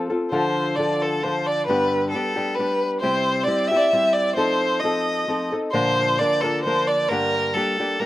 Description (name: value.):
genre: mexican folk.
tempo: 133 BPM.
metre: 3/4.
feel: straight.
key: unclear.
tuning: A4 = 439 Hz.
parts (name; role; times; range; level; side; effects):
nylon-string guitar; accompaniment; 0.0-8.1 s; G2 to Bb4; -24 LUFS; left 2 dB; none.
clear violin; melody; 0.3-8.1 s; A4 to E5; -21 LUFS; equal; slapback echo.
room: little or no reverb.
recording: recorded outdoors, with no room sound.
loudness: -19 LUFS.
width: side -15 dB against mid.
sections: 0.3-8.1 A section.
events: none.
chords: 0.3 Dm; 1.7 G; 3.0 C; 4.4 F7; 5.7 Bb; 7.1 Gm.